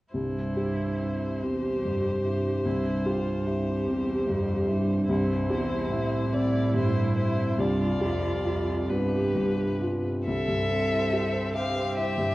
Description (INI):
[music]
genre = classical, slow romantic movement for piano quartet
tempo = 42-50 BPM (dotted quarters)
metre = 6/8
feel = rubato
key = C major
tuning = A4 = 440 Hz
[part]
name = rich violin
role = melody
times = 0.1-12.3 s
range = B4 to F5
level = -33 LUFS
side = left 3 dB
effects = none
[part]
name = rich cello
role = second line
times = 0.1-12.3 s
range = E2 to A4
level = -30 LUFS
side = right 2 dB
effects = none
[part]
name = rich viola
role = accompaniment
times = 0.1-12.3 s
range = C4 to G4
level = -33 LUFS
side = right 1 dB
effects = none
[part]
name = warm grand piano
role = accompaniment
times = 0.1-12.3 s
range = C2 to E5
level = -28 LUFS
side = equal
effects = none
[sound]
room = wet recital hall reverb, RT60 1.5 s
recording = worn, warbling old tape, cassette tape, warbly pitch drift, nothing above 10.8 kHz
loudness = -24 LUFS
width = side -17 dB against mid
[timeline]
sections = 0.1-10.3 A section; 10.3-12.3 B section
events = none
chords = 0.1 C; 7.6 G7/C; 10.3 C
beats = | 0.14 1.44 | 2.66 3.87 | 5.09 6.33 | 7.58 8.89 | 10.27 11.54